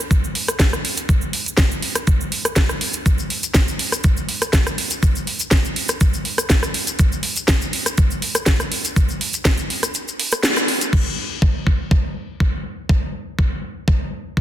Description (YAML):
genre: nu-disco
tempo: 122 BPM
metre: 4/4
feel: straight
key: none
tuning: none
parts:
  - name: cabasa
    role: percussion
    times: 0.0-10.9 s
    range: none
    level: -29 LUFS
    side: right 4 dB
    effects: none
  - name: electronic kick drum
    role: drums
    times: 0.1-14.4 s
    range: none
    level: -18 LUFS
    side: equal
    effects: studio reverb
  - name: house drum kit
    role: drums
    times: 0.1-11.0 s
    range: crash cymbal, hi-hat, rim click, shaker, snare drum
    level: -20 LUFS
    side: equal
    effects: studio reverb
room: light reverb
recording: dense, heavily limited modern master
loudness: -17 LUFS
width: side -12 dB against mid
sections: 0.0-10.9 A section; 10.9-14.4 B section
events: kick drops out 9.9-10.9; band accent 10.4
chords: none